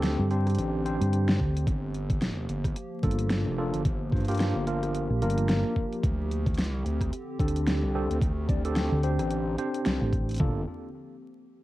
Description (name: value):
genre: glitch hop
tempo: 110 BPM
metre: 4/4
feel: swing 58% on 16ths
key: G minor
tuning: A4 = 439 Hz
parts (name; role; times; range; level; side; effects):
- warbly tape-like pad; sustained chords; 0.0-10.7 s; D3 to G4; -37 LUFS; equal; chorus, built-in reverb, sidechain pumping
- tine electric piano; stabs; 0.0-10.6 s; Bb3 to D5; -31 LUFS; equal; medium stereo tremolo, sidechain pumping, analog delay
- gritty driven synth bass; bass; 0.0-10.7 s; F1 to G2; -30 LUFS; equal; overdrive
- dubstep drum kit; drums; 0.0-10.4 s; hi-hat, rim click, snare drum; -31 LUFS; equal; overdrive
- fingered electric bass; bass; 0.2-10.4 s; G1 to G2; -26 LUFS; equal; none
- dubstep drum kit; drums; 1.4-10.5 s; kick drum, toms; -28 LUFS; equal; overdrive
room: little or no reverb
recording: home recording on cassette, vinyl crackle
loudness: -25 LUFS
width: side -16 dB against mid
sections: 0.0-10.4 A section; 10.4-11.6 B section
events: drop 0.0-10.4; band accent 9.9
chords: 0.0 D7sus4; 1.7 Gm7; 6.0 D7sus4; 10.4 Gm7